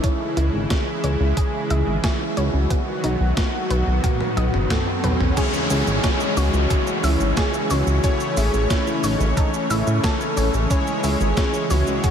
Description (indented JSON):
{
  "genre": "synthwave",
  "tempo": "90 BPM",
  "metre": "4/4",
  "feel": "straight",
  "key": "C# minor",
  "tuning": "A4 = 442 Hz",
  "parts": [
    { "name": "warm velvety synth lead", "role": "melody", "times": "0.0-12.1 s", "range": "D#4 to A4", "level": "-27 LUFS", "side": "equal", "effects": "chorus, cassette tape, ping-pong delay" },
    { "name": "warm analog pad", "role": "sustained chords", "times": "0.0-12.1 s", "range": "C#3 to F#4", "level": "-26 LUFS", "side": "equal", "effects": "chorus, sidechain pumping" },
    { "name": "analog pluck", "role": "arpeggios", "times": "0.0-12.1 s", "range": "B3 to E5", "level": "-31 LUFS", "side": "equal", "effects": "chorus, cassette tape, analog delay" },
    { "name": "electronic kick drum", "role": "drums", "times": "0.0-12.1 s", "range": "none", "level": "-22 LUFS", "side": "equal", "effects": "none" },
    { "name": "gated 80s digital drum machine", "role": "drums", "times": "0.0-12.1 s", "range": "crash cymbal, hi-hat, shaker, snare drum, toms", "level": "-28 LUFS", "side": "equal", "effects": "gated reverb, gated reverb snare" },
    { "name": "riser and downlifter", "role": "sound effects", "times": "2.3-10.7 s", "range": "none", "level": "-30 LUFS", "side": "equal", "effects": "none" },
    { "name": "chorused synth bass", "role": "bass", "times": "0.4-12.0 s", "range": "F#1 to A2", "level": "-20 LUFS", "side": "equal", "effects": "none" },
    { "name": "analog synth brass", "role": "stabs", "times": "5.4-12.1 s", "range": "E3 to C#5", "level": "-27 LUFS", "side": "left 4 dB", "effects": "chorus, analog delay" }
  ],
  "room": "moderate huge ambient reverb, RT60 7.7 s",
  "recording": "dreamy mix soaked in reverb",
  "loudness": "-18 LUFS",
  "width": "side -8 dB against mid",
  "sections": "0.0-5.4 A section; 5.4-12.1 B section",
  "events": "filter sweep on synth arpeggio sound 0.0-5.4; riser 2.3-5.4; drum fill 4.0-5.4",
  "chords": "0.0 C#m; 2.7 B; 5.4 C#m; 8.0 A; 10.7 C#m",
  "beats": "| 0.04 0.70 1.37 2.04 | 2.70 3.37 4.04 4.70 | 5.37 6.04 6.70 7.37 | 8.04 8.70 9.37 10.04 | 10.70 11.37 12.04"
}